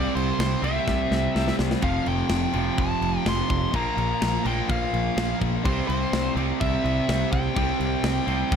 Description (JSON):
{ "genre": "hard rock", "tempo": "126 BPM", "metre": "4/4", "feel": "straight", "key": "unclear", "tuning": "A4 = 440 Hz", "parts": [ { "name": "nasal lead guitar with a parked wah", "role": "melody", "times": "0.0-8.6 s", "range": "C5 to C6", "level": "-29 LUFS", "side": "left 1 dB", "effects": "overdrive, slapback echo" }, { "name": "crunchy overdriven guitar", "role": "riff", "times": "0.0-8.6 s", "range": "F2 to C4", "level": "-29 LUFS", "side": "right 12 dB", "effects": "none" }, { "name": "crunchy overdriven guitar", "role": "riff", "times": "0.0-8.6 s", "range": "F2 to C4", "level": "-33 LUFS", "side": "equal", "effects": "none" }, { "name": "tight distorted guitar", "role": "riff", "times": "0.0-8.6 s", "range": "F2 to C4", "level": "-30 LUFS", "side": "left 14 dB", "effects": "distortion" }, { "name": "modern bright picked electric bass", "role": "bass", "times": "0.0-8.6 s", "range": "F1 to C2", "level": "-28 LUFS", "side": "equal", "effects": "none" }, { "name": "tight metal drum kit", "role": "drums", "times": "0.2-8.6 s", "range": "crash cymbal, kick drum, snare drum", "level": "-28 LUFS", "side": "equal", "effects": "none" } ], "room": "light reverb", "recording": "none", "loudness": "-22 LUFS", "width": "side -7 dB against mid", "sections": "0.0-8.6 A section", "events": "drum fill 0.9-1.8", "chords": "0.0 C; 1.8 F; 3.7 Bb5; 5.7 C" }